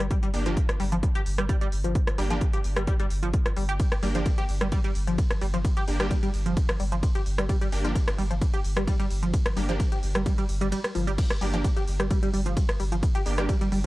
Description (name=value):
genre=driving peak-time techno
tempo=130 BPM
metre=4/4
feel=straight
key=G minor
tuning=A4 = 438 Hz
part: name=tight sequenced synth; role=riff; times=0.0-13.8 s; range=F3 to G4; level=-31 LUFS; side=equal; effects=chorus, phaser, overdrive, sidechain pumping, tape echo
part: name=saturated sub bass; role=bass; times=0.0-13.8 s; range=G1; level=-29 LUFS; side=equal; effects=overdrive, sidechain pumping, low-pass filter
part: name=techno drum kit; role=drums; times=0.0-13.8 s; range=crash cymbal, hi-hat, ride cymbal, rim click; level=-34 LUFS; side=equal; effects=none
part: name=electronic kick drum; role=drums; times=0.1-13.6 s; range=none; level=-25 LUFS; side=equal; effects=none
part: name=rave stab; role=stabs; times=0.3-13.5 s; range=Bb3 to G4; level=-33 LUFS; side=right 1 dB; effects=chorus, built-in reverb, sidechain pumping, tape echo
room=digital ambience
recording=dry, gritty hardware recording, cassette tape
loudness=-23 LUFS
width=side -18 dB against mid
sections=0.0-13.9 A section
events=kick drops out 10.7-11.2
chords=0.0 Gm